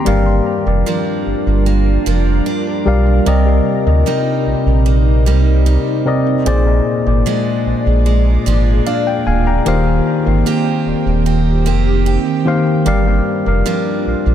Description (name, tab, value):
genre	R&B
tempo	75 BPM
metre	4/4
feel	straight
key	Eb major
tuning	A4 = 441 Hz
part	tine electric piano	accompaniment	0.0-14.3 s	Bb2 to Bb5	-17 LUFS	left 4 dB	analog delay
part	ethereal airy pad	sustained chords	0.0-14.3 s	C3 to D5	-21 LUFS	right 2 dB	ensemble chorus, built-in reverb, phaser
part	picked steel-string acoustic guitar	arpeggios	0.0-14.3 s	G2 to G4	-22 LUFS	right 8 dB	analog delay
part	sub bass with octave	bass	0.1-14.3 s	D1 to D2	-14 LUFS	equal	none
room	digital ambience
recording	echo-heavy mix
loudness	-12 LUFS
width	side -10 dB against mid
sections	0.0-14.3 A section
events	none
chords	0.1 Gm7; 3.3 Cm7; 6.5 Bb7; 9.7 Eb6; 12.9 Gm7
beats	| 0.06 0.86 1.66 2.46 | 3.26 4.06 4.86 5.66 | 6.46 7.26 8.06 8.86 | 9.66 10.46 11.26 12.06 | 12.86 13.66